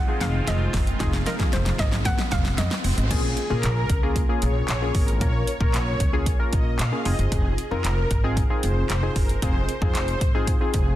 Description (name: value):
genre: dance-pop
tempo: 114 BPM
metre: 4/4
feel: straight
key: Bb minor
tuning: A4 = 442 Hz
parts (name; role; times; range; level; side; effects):
- hollow square pluck; melody; 0.0-2.8 s; C5 to Gb5; -32 LUFS; right 1 dB; chorus, low-pass filter, digital delay
- sweeping resonant pad; sustained chords; 0.0-3.1 s; Eb3 to F4; -34 LUFS; equal; chorus, sidechain pumping, low-pass filter
- riser; sound effects; 0.1-3.1 s; none; -35 LUFS; equal; none
- warm analog keys; accompaniment; 0.1-11.0 s; Bb3 to Bb4; -29 LUFS; left 2 dB; chorus, sidechain pumping, low-pass filter
- upright bass; bass; 0.2-10.9 s; F1 to Bb2; -25 LUFS; equal; sidechain pumping
- pop drum kit; drums; 0.2-10.9 s; crash cymbal, handclaps, hi-hat, kick drum, snare drum; -24 LUFS; equal; none
room: digital ambience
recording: dense, heavily limited modern master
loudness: -20 LUFS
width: side -14 dB against mid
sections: 0.0-3.1 A section; 3.1-11.0 B section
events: build-up 0.0-3.1; drum fill 0.0-3.1; filter sweep 0.0-3.1; riser 0.1-3.1; drop 3.1-11.0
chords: 0.0 Fm7; 3.1 Bbm7; 7.1 Fm7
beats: 0.48 | 1.00 1.53 2.05 2.58 | 3.11 3.63 4.16 4.69 | 5.21 5.74 6.26 6.79 | 7.32 7.84 8.37 8.90 | 9.42 9.95 10.48